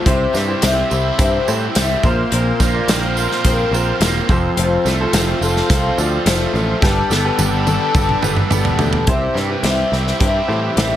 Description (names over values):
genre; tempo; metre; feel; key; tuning
folk rock and heartland rock; 106 BPM; 4/4; straight; C major; A4 = 440 Hz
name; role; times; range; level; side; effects
picked twelve-string acoustic guitar; accompaniment; 0.0-11.0 s; F2 to Bb4; -21 LUFS; left 4 dB; none
musette accordion; sustained chords; 0.0-11.0 s; C4 to C6; -26 LUFS; right 3 dB; none
crunchy overdriven guitar; riff; 0.0-11.0 s; F2 to A4; -22 LUFS; right 1 dB; spring reverb
bright upright piano; accompaniment; 0.1-11.0 s; E4 to B5; -27 LUFS; right 1 dB; none
picked electric bass; bass; 0.1-11.0 s; E1 to A2; -20 LUFS; equal; none
natural country drum kit; drums; 0.1-10.9 s; hi-hat, kick drum, snare drum, toms; -19 LUFS; equal; none
tambourine; percussion; 0.1-8.9 s; none; -30 LUFS; right 8 dB; none
room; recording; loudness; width
light reverb, small room ambience; none; -14 LUFS; side -11 dB against mid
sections
0.0-9.1 A section; 9.1-11.0 B section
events
drum fill 6.8-9.1; upright piano fill 8.2-9.1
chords
0.1 C; 2.0 Bbsus2; 4.3 F; 6.8 Gadd9; 9.1 C